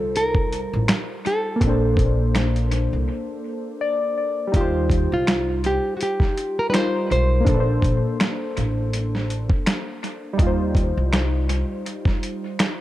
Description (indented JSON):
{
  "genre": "lo-fi hip hop",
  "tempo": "82 BPM",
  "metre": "4/4",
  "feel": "swing 57% on 16ths",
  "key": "unclear",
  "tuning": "A4 = 440 Hz",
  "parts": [
    { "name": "nylon-string guitar", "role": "melody", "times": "0.0-9.3 s", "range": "F4 to C5", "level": "-24 LUFS", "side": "equal", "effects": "low-pass filter, tape echo" },
    { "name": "warm analog keys", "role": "accompaniment", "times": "0.0-12.8 s", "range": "G3 to D5", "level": "-25 LUFS", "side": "left 1 dB", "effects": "chorus, low-pass filter, tape echo" },
    { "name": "upright bass", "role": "bass", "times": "0.0-11.6 s", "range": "A1 to Eb2", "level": "-22 LUFS", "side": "equal", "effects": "none" },
    { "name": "dusty soul sampler-style drum kit", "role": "drums", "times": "0.2-12.8 s", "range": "finger snaps, hi-hat, kick drum, snare drum", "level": "-22 LUFS", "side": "equal", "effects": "overdrive, tape echo" }
  ],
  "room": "light reverb",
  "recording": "echo-heavy mix",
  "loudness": "-19 LUFS",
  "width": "side -14 dB against mid",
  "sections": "0.0-4.5 A section; 4.5-12.8 B section",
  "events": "break 3.1-4.5",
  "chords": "0.0 Eb69; 1.6 Bbmaj9; 4.5 Eb69; 7.5 Bbmaj9; 10.4 Eb69"
}